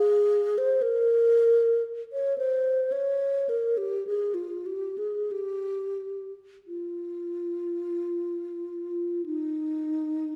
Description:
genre	classical, free, expressive piece for unaccompanied alto flute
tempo	35-58 BPM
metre	4/4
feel	rubato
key	F minor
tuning	A4 = 439 Hz
part	mellow hollow wooden-headed alto flute	solo	0.0-10.4 s	Eb4 to Db5	-27 LUFS	equal	none
room	wet recital hall reverb, RT60 1.6 s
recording	none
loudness	-27 LUFS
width	mono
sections	0.0-10.4 A section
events	none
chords	none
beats	| 0.84 1.87 2.95 4.08 | 5.34 6.69 8.00 9.27

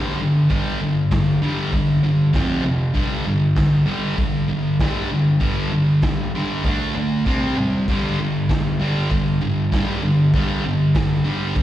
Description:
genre	garage rock duo or trio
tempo	98 BPM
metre	4/4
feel	straight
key	unclear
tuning	A4 = 440 Hz
part	thick fuzz guitar	riff	0.0-11.6 s	F2 to D4	-18 LUFS	equal	distortion
part	raw garage drum kit	drums	0.5-11.6 s	crash cymbal, hi-hat, kick drum, snare drum, toms	-24 LUFS	equal	none
room	wet club ambience, RT60 0.5 s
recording	live gig heard through the venue's PA, recital hall reverb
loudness	-17 LUFS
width	side -13 dB against mid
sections	0.0-11.6 A section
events	drum fill 7.3-7.9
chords	0.0 G5; 2.3 F5; 3.0 G5; 6.6 D5; 7.3 C5; 7.9 G5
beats	| 0.51 1.12 1.73 2.35 | 2.96 3.57 4.19 4.80 | 5.42 6.03 6.65 7.26 | 7.88 8.49 9.11 9.72 | 10.34 10.96 11.57

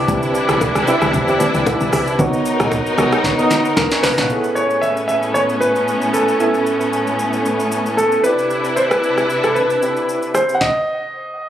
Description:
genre	amapiano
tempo	114 BPM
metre	4/4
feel	swing 55% on 16ths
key	unclear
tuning	A4 = 442 Hz
part	soft electric-piano-like synth keys	accompaniment	0.0-10.6 s	B3 to C#6	-21 LUFS	right 1 dB	chorus, tremolo
part	rich studio string section	sustained chords	0.0-10.6 s	A2 to B4	-20 LUFS	left 1 dB	sidechain pumping
part	woody log drum bass	bass	0.0-4.3 s	A#1 to E2	-24 LUFS	equal	none
part	afro-pop drum kit	drums	0.1-10.7 s	hi-hat, kick drum, rim click, shaker, snare drum	-23 LUFS	equal	none
part	congas and bongos	percussion	0.1-3.9 s	none	-24 LUFS	left 2 dB	none
part	warm grand piano	melody	3.8-11.5 s	A4 to F#5	-18 LUFS	equal	digital delay
room	light reverb, small room ambience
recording	recorded on a phone in the room, club ambience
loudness	-14 LUFS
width	side -10 dB against mid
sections	0.0-4.3 A section; 4.3-11.5 B section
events	drop 0.0-4.3; drum fill 3.2-4.3; stop 10.6-11.5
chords	0.0 Cmaj9; 2.2 Bmaj9; 4.3 Amaj9; 8.2 Cmaj9; 10.6 N.C.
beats	| 0.08 0.61 1.14 1.66 | 2.19 2.72 3.24 3.77 | 4.29 4.82 5.35 5.87 | 6.40 6.93 7.45 7.98 | 8.51 9.03 9.56 10.08 | 10.61 11.14

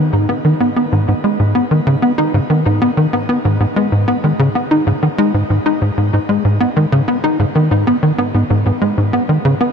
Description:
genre	ambient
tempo	95 BPM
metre	4/4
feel	straight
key	G# minor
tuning	A4 = 440 Hz
part	tight sequencer bass	riff	0.0-9.7 s	G#2 to D#4	-12 LUFS	equal	analog chorus, tape echo
room	moderate shimmer reverb, RT60 8.9 s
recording	none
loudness	-12 LUFS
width	side -6 dB against mid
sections	0.0-9.7 A section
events	none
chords	none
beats	0.29 | 0.92 1.55 2.18 2.82 | 3.45 4.08 4.71 5.34 | 5.97 6.61 7.24 7.87 | 8.50 9.13

